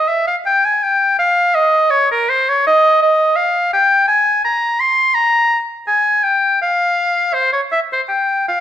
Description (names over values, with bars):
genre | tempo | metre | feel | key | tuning
classical, baroque-style fantasia for unaccompanied oboe | 82 BPM | 3/4 | rubato | F minor | A4 = 442 Hz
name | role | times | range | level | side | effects
bright oboe | solo | 0.0-8.6 s | Bb4 to C6 | -12 LUFS | equal | none
room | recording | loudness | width
wet stone room reverb, RT60 1.2 s | dark, warm production | -12 LUFS | side -11 dB against mid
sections
0.0-8.6 A section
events
none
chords
none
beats
0.06 | 0.82 1.55 2.29 | 3.01 3.72 4.43 | 5.15 5.88 6.61 | 7.34 8.09